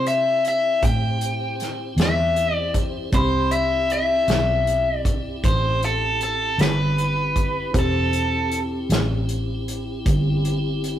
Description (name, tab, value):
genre	slow blues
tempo	52 BPM (dotted quarters)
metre	12/8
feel	straight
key	A minor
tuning	A4 = 443 Hz
part	biting overdriven guitar	melody	0.0-8.6 s	A4 to G5	-22 LUFS	left 1 dB	none
part	dark baby grand piano	accompaniment	0.0-11.0 s	C4 to B5	-28 LUFS	left 1 dB	none
part	tonewheel organ	sustained chords	0.0-11.0 s	C4 to C5	-32 LUFS	left 2 dB	slow rotary speaker
part	vintage muted fingered electric bass	bass	0.0-11.0 s	E1 to C3	-24 LUFS	right 1 dB	none
part	natural country drum kit	drums	0.1-11.0 s	hi-hat, kick drum, snare drum	-24 LUFS	equal	none
room	moderate stone room reverb, RT60 1.4 s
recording	rough rehearsal-room recording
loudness	-19 LUFS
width	side -11 dB against mid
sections	0.0-11.0 A section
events	none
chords	0.0 Am7